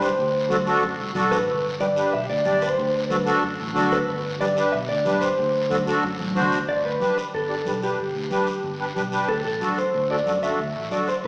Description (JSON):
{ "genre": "latin, cumbia", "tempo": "184 BPM", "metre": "4/4", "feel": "straight", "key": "G major", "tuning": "A4 = 439 Hz", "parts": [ { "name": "mellow electric guitar", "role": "second line", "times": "0.0-11.3 s", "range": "G4 to E5", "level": "-26 LUFS", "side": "equal", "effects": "none" }, { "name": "accordion", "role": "accompaniment", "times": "0.0-11.1 s", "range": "D4 to D5", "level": "-27 LUFS", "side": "equal", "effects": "light tremolo tuning" }, { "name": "fingered electric bass", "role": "bass", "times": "0.0-11.3 s", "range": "G1 to F#2", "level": "-35 LUFS", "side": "equal", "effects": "none" }, { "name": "guiro", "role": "percussion", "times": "0.0-11.3 s", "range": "none", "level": "-40 LUFS", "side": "equal", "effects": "none" }, { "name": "congas", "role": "percussion", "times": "0.2-11.3 s", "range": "none", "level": "-35 LUFS", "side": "equal", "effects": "none" } ], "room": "wet recital hall reverb, RT60 1.7 s", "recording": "recorded in a church or concert hall, small speaker sound", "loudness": "-23 LUFS", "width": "mono", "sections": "0.0-6.7 A section; 6.7-11.3 B section", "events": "clean electric guitar solo 0.0-6.7, 6.7-11.3; drum fill 6.2-6.7", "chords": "0.2 D7; 1.5 G; 2.8 D7; 4.1 G; 5.4 D7; 6.7 G; 9.3 D" }